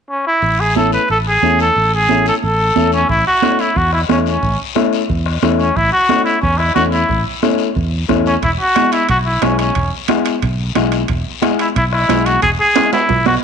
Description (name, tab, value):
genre	latin, cumbia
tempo	180 BPM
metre	4/4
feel	straight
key	A major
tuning	A4 = 440 Hz
part	breathy trumpet	melody	0.1-13.3 s	C#4 to B4	-14 LUFS	equal	none
part	fingered electric bass	bass	0.4-13.4 s	E1 to E2	-19 LUFS	equal	none
part	congas	percussion	0.4-13.3 s	none	-20 LUFS	right 15 dB	none
part	guiro	percussion	0.4-13.4 s	none	-28 LUFS	left 14 dB	none
part	dark upright piano	accompaniment	0.8-13.0 s	G#3 to E4	-20 LUFS	left 10 dB	none
part	bombo	percussion	3.1-13.4 s	none	-23 LUFS	left 1 dB	none
part	timbales	percussion	8.4-13.3 s	none	-22 LUFS	right 12 dB	none
room	moderate echo chamber reverb, RT60 1.3 s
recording	1960s-style stereo with parts hard left and right, nothing above 10.3 kHz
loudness	-12 LUFS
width	side -7 dB against mid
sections	0.4-3.1 A section; 3.1-13.4 B section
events	drum fill 12.8-13.4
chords	0.4 A; 8.4 E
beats	0.09 | 0.42 0.76 1.09 1.43 | 1.76 2.09 2.43 2.76 | 3.10 3.43 3.76 4.10 | 4.43 4.76 5.09 5.43 | 5.76 6.09 6.43 6.76 | 7.09 7.43 7.76 8.10 | 8.43 8.76 9.10 9.43 | 9.76 10.10 10.43 10.76 | 11.10 11.43 11.77 12.10 | 12.43 12.77 13.10